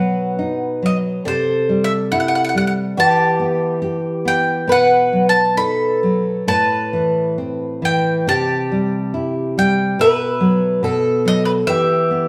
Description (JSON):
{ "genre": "fado-style ballad", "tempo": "65-73 BPM", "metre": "2/4", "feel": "rubato", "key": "unclear", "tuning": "A4 = 440 Hz", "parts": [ { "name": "bowl-back mandolin", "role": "melody", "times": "0.0-12.3 s", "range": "B4 to B5", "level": "-21 LUFS", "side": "equal", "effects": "none" }, { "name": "picked twelve-string acoustic guitar", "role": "second line", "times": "0.0-12.3 s", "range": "G4 to B4", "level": "-23 LUFS", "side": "equal", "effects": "none" }, { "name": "nylon-string guitar", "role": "accompaniment", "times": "0.0-12.3 s", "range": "A2 to G4", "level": "-21 LUFS", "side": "equal", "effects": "none" } ], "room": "wet large studio reverb, RT60 1.0 s", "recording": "band playing live in one room", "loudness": "-17 LUFS", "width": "mono", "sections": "0.0-12.3 A section", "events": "none", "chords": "0.0 B; 1.3 C; 3.0 Em; 4.7 B; 6.5 Amadd9; 8.3 C; 10.0 B5; 11.7 Em" }